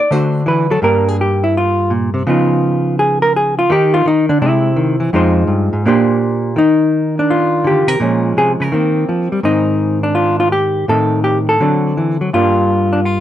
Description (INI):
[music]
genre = solo jazz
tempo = 167 BPM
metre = 4/4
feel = swing 66% on 8ths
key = Eb major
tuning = A4 = 440 Hz
[part]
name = hollow-body jazz guitar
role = solo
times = 0.0-13.2 s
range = F2 to D5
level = -12 LUFS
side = equal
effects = none
[sound]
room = light reverb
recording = none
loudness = -12 LUFS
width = side -11 dB against mid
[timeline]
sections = 0.0-6.6 A section; 6.6-13.2 B section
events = hollow-body jazz guitar solo 0.0-6.6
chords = 0.1 D7; 0.8 Gm7; 2.3 Db9; 3.7 Ebmaj9; 4.4 Caug; 5.1 Fm7; 5.8 Bb69; 6.6 Ebmaj9; 8.0 Bbm7; 8.7 Eb69; 9.4 Ab; 10.9 Adim; 11.6 D7; 12.3 Gm7